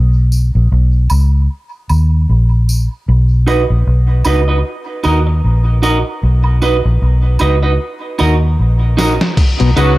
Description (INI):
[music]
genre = dub reggae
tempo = 76 BPM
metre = 4/4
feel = swing 57% on 16ths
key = Eb minor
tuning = A4 = 439 Hz
[part]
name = vintage muted fingered electric bass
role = bass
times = 0.0-10.0 s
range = Bb1 to Eb2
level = -11 LUFS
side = equal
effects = none
[part]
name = tambourine and woodblock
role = percussion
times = 0.3-10.0 s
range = none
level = -26 LUFS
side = right 2 dB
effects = dub echo
[part]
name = clean electric guitar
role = accompaniment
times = 3.5-9.9 s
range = D#4 to D#5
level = -17 LUFS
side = right 3 dB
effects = warbly pitch drift, low-pass filter, dub echo
[part]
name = trip hop sampler-style drum kit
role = drums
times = 9.0-10.0 s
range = crash cymbal, hi-hat, kick drum, snare drum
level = -14 LUFS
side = equal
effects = none
[part]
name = auto-wah clav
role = riff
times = 9.6-10.0 s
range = B2 to Db3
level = -15 LUFS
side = left 7 dB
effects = none
[part]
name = clear horn section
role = second line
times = 9.8-10.0 s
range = F#3 to F#4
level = -18 LUFS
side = left 2 dB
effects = none
[sound]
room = digital ambience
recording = none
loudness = -11 LUFS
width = side -18 dB against mid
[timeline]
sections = 0.0-9.4 A section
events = break 0.0-3.1; drum fill 8.6-9.4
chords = 0.0 N.C.; 1.5 Eb5; 3.1 B; 4.6 Ebm; 6.2 B; 7.8 Ebm; 9.4 B